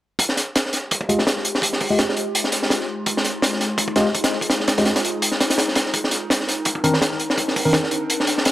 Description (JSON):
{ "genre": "drum and bass, jungle", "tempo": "167 BPM", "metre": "4/4", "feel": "swing 55% on 16ths", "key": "F minor", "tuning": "A4 = 445 Hz", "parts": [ { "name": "warbly tape-like pad", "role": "sustained chords", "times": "0.8-8.5 s", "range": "Ab3 to Bb4", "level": "-27 LUFS", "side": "equal", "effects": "chorus, built-in reverb, phaser" }, { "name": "crunchy breakbeat drum kit", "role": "drums", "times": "0.2-8.5 s", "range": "hi-hat, kick drum, snare drum", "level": "-19 LUFS", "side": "equal", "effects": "high-pass filter on kick, high-pass filter on hats, high-pass filter on snare, high-pass filter on room" }, { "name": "tine electric piano", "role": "stabs", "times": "1.1-7.7 s", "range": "Eb3 to Eb5", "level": "-23 LUFS", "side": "left 1 dB", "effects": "fast stereo tremolo, vintage 12-bit sampler grit, low-pass filter, dub echo" } ], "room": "light reverb, small room ambience", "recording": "dry, gritty hardware recording", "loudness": "-18 LUFS", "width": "side -15 dB against mid", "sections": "0.2-8.5 A section", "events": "none", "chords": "0.2 Fm9; 5.9 Cm9", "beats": "| 0.19 0.55 0.91 1.27 | 1.63 1.99 2.35 2.71 | 3.07 3.43 3.79 4.14 | 4.50 4.86 5.22 5.58 | 5.94 6.30 6.66 7.02 | 7.38 7.74 8.10 8.46" }